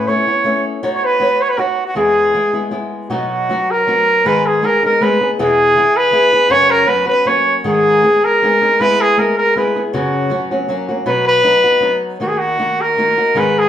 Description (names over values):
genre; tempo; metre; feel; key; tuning
mexican folk; 159 BPM; 3/4; swing 53% on 8ths, rubato; E major, B major from 3.1 s; A4 = 440 Hz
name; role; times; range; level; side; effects
clear trumpet; melody; 0.0-13.7 s; F#4 to C#5; -13 LUFS; equal; none
flamenco guitar; accompaniment; 0.0-13.7 s; E2 to C#5; -18 LUFS; left 1 dB; none
room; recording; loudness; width
wet studio reverb, RT60 0.8 s; band playing live in one room; -12 LUFS; side -10 dB against mid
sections
0.0-3.1 A section; 3.1-13.7 B section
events
none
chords
0.0 Aadd9; 0.8 Badd9; 2.0 E; 3.1 B; 4.3 G#m; 5.4 E; 6.5 F#sus4; 7.3 F#; 7.6 G#m; 8.8 E/G#; 9.9 F#sus4; 10.7 F#; 11.1 B; 12.2 D#m